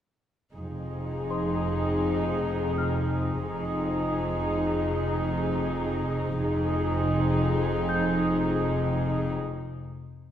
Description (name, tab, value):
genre	cinematic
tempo	82 BPM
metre	4/4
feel	straight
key	F minor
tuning	A4 = 438 Hz
part	dark studio viola section	accompaniment	0.5-9.3 s	Eb4 to Ab4	-28 LUFS	left 1 dB	none
part	rich symphonic cello section	bass	0.5-9.3 s	F2	-31 LUFS	right 1 dB	none
part	warm symphonic double bass section	bass	0.5-9.3 s	F1	-31 LUFS	right 1 dB	none
part	celesta	texture	1.3-10.3 s	C5 to G6	-37 LUFS	left 3 dB	none
room	wet scoring stage reverb, RT60 1.7 s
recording	heard from further back in the room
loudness	-25 LUFS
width	side -10 dB against mid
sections	0.5-10.3 A section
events	break 9.3-10.3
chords	0.5 Fm7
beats	| 0.53 1.27 2.01 2.75 | 3.49 4.21 4.94 5.67 | 6.40 7.13 7.86 8.59 | 9.32 10.06